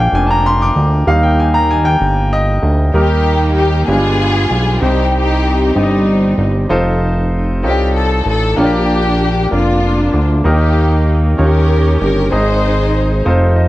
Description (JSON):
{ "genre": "slow gospel", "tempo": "64 BPM (dotted quarters)", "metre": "6/8", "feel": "straight", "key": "Eb major", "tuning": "A4 = 440 Hz", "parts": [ { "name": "clear baby grand piano", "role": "accompaniment", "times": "0.0-13.7 s", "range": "G2 to D6", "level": "-16 LUFS", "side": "equal", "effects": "none" }, { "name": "fat analog bass", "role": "bass", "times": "0.0-13.7 s", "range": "F1 to Eb2", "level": "-14 LUFS", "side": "equal", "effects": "none" }, { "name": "warm studio string section", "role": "melody", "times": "3.0-13.2 s", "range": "G3 to C5", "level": "-17 LUFS", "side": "left 1 dB", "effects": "none" } ], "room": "light reverb", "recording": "worn, warbling old tape, cassette tape, warbly pitch drift", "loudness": "-11 LUFS", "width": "side -16 dB against mid", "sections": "0.0-2.9 A section; 2.9-13.7 B section", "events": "grand piano solo 0.0-2.9; grand piano fill 13.3-13.7", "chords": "0.0 Bb; 1.1 Eb; 3.9 G7b9; 4.8 Cm; 6.7 F7; 8.6 Bb; 10.5 Eb; 11.4 Eb7; 12.3 Ab" }